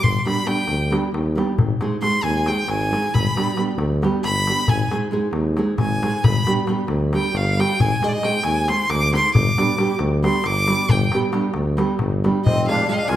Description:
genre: balkan folk, Balkan wedding band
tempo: 271 BPM (eighths)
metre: 7/8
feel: straight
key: G phrygian dominant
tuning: A4 = 440 Hz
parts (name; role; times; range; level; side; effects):
- clear violin; melody; 0.0-13.2 s; D5 to D6; -22 LUFS; equal; none
- mellow tuba; bass; 0.0-13.2 s; F1 to Eb2; -23 LUFS; equal; none
- darbuka; percussion; 0.0-13.2 s; none; -23 LUFS; left 2 dB; none
- nylon-string guitar; accompaniment; 0.2-13.0 s; G3 to Ab4; -23 LUFS; right 2 dB; none
- musette accordion; second line; 12.5-13.2 s; C4 to F4; -25 LUFS; left 3 dB; none
room: wet recital hall reverb, RT60 1.4 s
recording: recorded in a church or concert hall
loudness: -17 LUFS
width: side -12 dB against mid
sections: 0.0-12.5 A section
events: violin solo 0.0-12.5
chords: 0.0 G; 1.6 Ab; 3.1 G; 4.7 Ab; 6.2 G; 7.8 Ab; 9.3 G; 12.5 Fm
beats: | 0.03 0.25 0.47 0.70 0.92 1.14 1.36 | 1.58 1.80 2.03 2.25 2.47 2.69 2.92 | 3.14 3.36 3.58 3.80 4.02 4.25 4.47 | 4.69 4.91 5.13 5.36 5.58 5.80 6.02 | 6.24 6.47 6.69 6.91 7.13 7.35 7.58 | 7.80 8.02 8.24 8.46 8.68 8.91 9.13 | 9.35 9.57 9.79 10.01 10.24 10.46 10.68 | 10.90 11.12 11.34 11.56 11.79 12.01 12.23 | 12.45 12.67 12.89 13.12

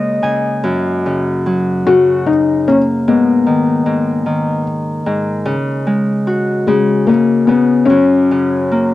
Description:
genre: children's music, lullaby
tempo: 49 BPM (dotted quarters)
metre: 6/8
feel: rubato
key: F# major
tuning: A4 = 436 Hz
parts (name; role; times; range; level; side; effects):
- felt-muted upright piano; melody; 0.0-8.9 s; G#3 to F#4; -12 LUFS; left 3 dB; none
- Celtic harp; accompaniment; 0.0-8.9 s; F#2 to G#5; -16 LUFS; equal; none
room: light reverb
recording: home recording on cassette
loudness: -12 LUFS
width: side -15 dB against mid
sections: 0.0-8.9 A section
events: harp fill 0.0-0.6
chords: 0.0 C#5; 0.6 F#; 3.1 G#m; 5.5 C#sus4; 6.7 N.C.; 7.9 F#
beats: | 0.64 1.86 | 3.07 4.26 | 5.46 6.67 | 7.89

